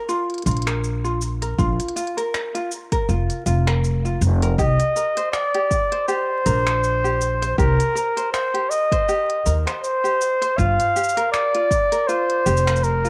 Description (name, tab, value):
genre	folktronica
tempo	80 BPM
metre	4/4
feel	swing 56% on 16ths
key	unclear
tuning	A4 = 438 Hz
part	ukulele	arpeggios	0.0-13.1 s	F4 to C5	-30 LUFS	equal	low-pass filter, tape echo
part	organic electronic drum kit	drums	0.1-13.1 s	finger snaps, hi-hat, shaker	-32 LUFS	equal	cassette tape
part	upright bass	bass	0.5-13.1 s	F1 to Eb2	-23 LUFS	equal	none
part	electronic kick drum	drums	1.6-11.9 s	none	-26 LUFS	equal	cassette tape
part	warm flugelhorn	melody	4.6-13.1 s	Bb4 to F5	-22 LUFS	equal	cassette tape
room	moderate spring reverb, RT60 2.2 s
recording	home recording on cassette, vinyl crackle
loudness	-21 LUFS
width	mono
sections	0.0-13.1 A section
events	filter sweep on ukulele 0.0-13.1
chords	0.0 Fsus4; 4.6 Cm7; 10.6 Gm7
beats	0.09 0.84 | 1.59 2.34 3.09 3.84 | 4.59 5.34 6.09 6.84 | 7.59 8.34 9.09 9.84 | 10.59 11.34 12.09 12.84